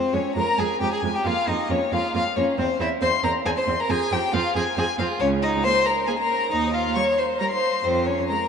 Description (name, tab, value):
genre	quick classical-period movement for string quartet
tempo	136 BPM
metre	3/4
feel	rubato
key	F minor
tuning	A4 = 440 Hz
part	rich violin	melody	0.0-8.5 s	C5 to Db6	-25 LUFS	left 5 dB	none
part	rich violin	second line	0.0-8.5 s	C4 to Db5	-24 LUFS	equal	none
part	warm viola	accompaniment	0.1-8.4 s	G3 to C4	-32 LUFS	right 4 dB	none
part	rich cello	bass	0.1-8.2 s	Db2 to F2	-28 LUFS	right 6 dB	none
room	wet cathedral reverb, RT60 5.4 s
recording	in a vast, echoing space, nothing above 10.7 kHz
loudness	-20 LUFS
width	side -6 dB against mid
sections	0.0-8.5 A section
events	none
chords	0.0 Fm; 1.2 Bbmadd11/F; 2.6 C/E; 3.9 F5; 5.2 Bbm/Db; 6.5 Eb; 7.8 Fm